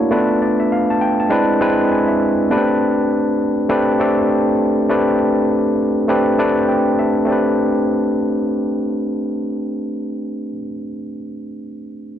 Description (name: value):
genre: soul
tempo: 100 BPM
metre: 4/4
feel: swing 58% on 16ths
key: A minor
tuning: A4 = 442 Hz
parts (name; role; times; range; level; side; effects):
- overdriven tine electric piano; solo; 0.0-12.2 s; G#3 to A5; -15 LUFS; equal; none
room: moderate plate reverb, RT60 3.6 s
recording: dark, warm production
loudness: -15 LUFS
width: side -10 dB against mid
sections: 0.0-7.3 A section; 7.3-9.7 B section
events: tine electric piano fill 1.6-2.5, 6.1-7.3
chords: 0.1 Bm7b5; 1.3 E7b13; 2.5 Am11